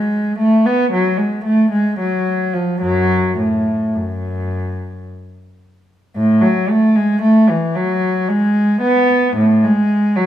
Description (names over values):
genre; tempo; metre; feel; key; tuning
classical, baroque-style suite movement for unaccompanied cello; 55 BPM; 3/4; rubato; F# minor; A4 = 441 Hz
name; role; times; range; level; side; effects
warm cello; solo; 0.0-10.3 s; F#2 to B3; -13 LUFS; equal; none
room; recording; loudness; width
light reverb; minimal, uncompressed stereo recording; -13 LUFS; side -11 dB against mid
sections
0.0-6.2 A section; 6.2-10.3 A section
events
none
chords
none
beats
0.67 1.75 | 2.85 3.96 5.06 | 6.17 7.24 8.30 | 9.38